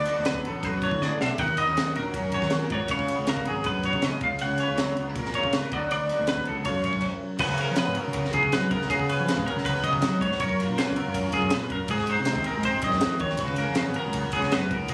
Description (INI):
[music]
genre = math rock and midwest emo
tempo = 160 BPM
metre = 4/4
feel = straight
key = unclear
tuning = A4 = 445 Hz
[part]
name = twangy electric guitar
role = accompaniment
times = 0.0-14.9 s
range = F#2 to B4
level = -34 LUFS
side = equal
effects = ensemble chorus
[part]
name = clean electric guitar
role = arpeggios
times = 0.0-14.9 s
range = G#4 to F#5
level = -30 LUFS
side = equal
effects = tremolo, slapback echo
[part]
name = fuzz fingered electric bass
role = bass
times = 0.0-14.9 s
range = G#1 to F#3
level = -32 LUFS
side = equal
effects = overdrive
[part]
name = crisp fusion drum kit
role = drums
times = 0.1-14.9 s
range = crash cymbal, kick drum, ride cymbal, snare drum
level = -32 LUFS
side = equal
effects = none
[sound]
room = light reverb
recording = recorded on a phone in the room, club ambience, compression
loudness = -26 LUFS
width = mono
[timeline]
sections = 0.0-7.4 A section; 7.4-14.9 B section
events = drum fill 1.0-1.4; stop 7.0-7.4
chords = 0.0 D6; 1.4 D#m7; 2.9 C#7sus4; 4.2 F#maj7/C#; 5.7 D6; 6.7 F#5; 7.4 C#7sus4; 10.4 F#maj7; 11.9 G#7; 13.4 C#7sus4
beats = 0.26 0.64 1.02 | 1.39 1.77 2.15 2.52 | 2.90 3.28 3.66 4.03 | 4.41 4.79 5.16 5.54 | 5.91 6.29 6.67 7.04 | 7.42 7.79 8.17 8.54 | 8.91 9.29 9.66 10.04 | 10.41 10.78 11.16 11.53 | 11.90 12.28 12.65 13.03 | 13.40 13.78 14.15 14.52 | 14.90